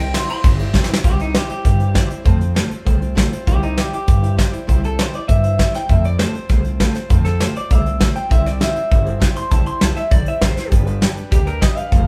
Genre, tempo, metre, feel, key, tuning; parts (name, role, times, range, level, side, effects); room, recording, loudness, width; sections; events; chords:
rockabilly; 199 BPM; 4/4; straight; C major; A4 = 441 Hz
electric guitar through a small old amp; melody; 0.0-12.1 s; Eb4 to C6; -26 LUFS; equal
picked old ladder-braced acoustic guitar; accompaniment; 0.0-12.1 s; C3 to C5; -30 LUFS; equal
upright bass; bass; 0.0-12.1 s; F1 to G2; -22 LUFS; equal
soft brush drum kit; drums; 0.1-12.0 s; hi-hat, kick drum, ride cymbal, snare drum; -19 LUFS; equal
moderate studio reverb, RT60 0.9 s; band playing live in one room; -17 LUFS; mono
0.0-1.1 A section; 1.1-12.1 B section
clean electric guitar solo 0.0-1.1; drum fill 0.7-1.1
0.0 C; 2.3 F; 3.5 C; 5.9 F; 8.3 C; 10.7 G